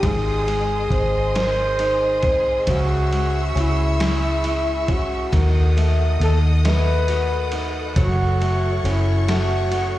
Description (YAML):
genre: six-eight pop ballad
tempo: 45 BPM (dotted quarters)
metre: 6/8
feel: straight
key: C# minor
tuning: A4 = 439 Hz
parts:
  - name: breathy flugelhorn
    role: melody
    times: 0.0-10.0 s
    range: E4 to B#4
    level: -24 LUFS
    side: equal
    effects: slapback echo, tape echo
  - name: flamenco guitar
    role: accompaniment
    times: 0.0-10.0 s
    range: G#2 to G4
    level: -26 LUFS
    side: equal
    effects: slapback echo
  - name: warm studio string section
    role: sustained chords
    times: 0.0-10.0 s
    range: G#4 to E6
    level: -29 LUFS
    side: equal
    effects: none
  - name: vintage muted fingered electric bass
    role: bass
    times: 0.0-10.0 s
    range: F#1 to D#2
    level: -20 LUFS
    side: equal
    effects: none
  - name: lo-fi sampler-style drum kit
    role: drums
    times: 0.0-9.9 s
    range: kick drum, ride cymbal, snare drum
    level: -27 LUFS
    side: equal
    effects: overdrive
room: light reverb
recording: live gig heard through the venue's PA, club reverb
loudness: -17 LUFS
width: side -15 dB against mid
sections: 0.0-10.0 A section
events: none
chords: 0.0 G#; 2.7 C#m; 5.3 D#dim; 8.0 F#m